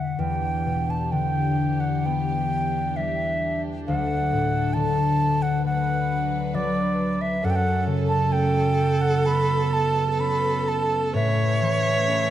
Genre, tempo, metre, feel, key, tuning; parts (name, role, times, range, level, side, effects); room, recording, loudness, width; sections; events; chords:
celtic folk, Celtic slow air; 66 BPM; 4/4; uneven beats, rubato; E dorian; A4 = 440 Hz
bright baroque flute; melody; 0.0-12.3 s; D5 to B5; -26 LUFS; right 2 dB
concert harp; accompaniment; 0.0-12.3 s; D2 to G5; -24 LUFS; left 2 dB
dark studio string section; sustained chords; 0.2-12.3 s; E3 to B4; -30 LUFS; equal
clear viola; second line; 7.4-12.3 s; A4 to C#5; -25 LUFS; right 3 dB
moderate scoring stage reverb, RT60 1.6 s; dark, warm production; -21 LUFS; side -11 dB against mid
0.2-12.3 A section
harp fill 0.0
0.2 Em7; 3.9 D; 7.4 F#m; 11.1 Aadd9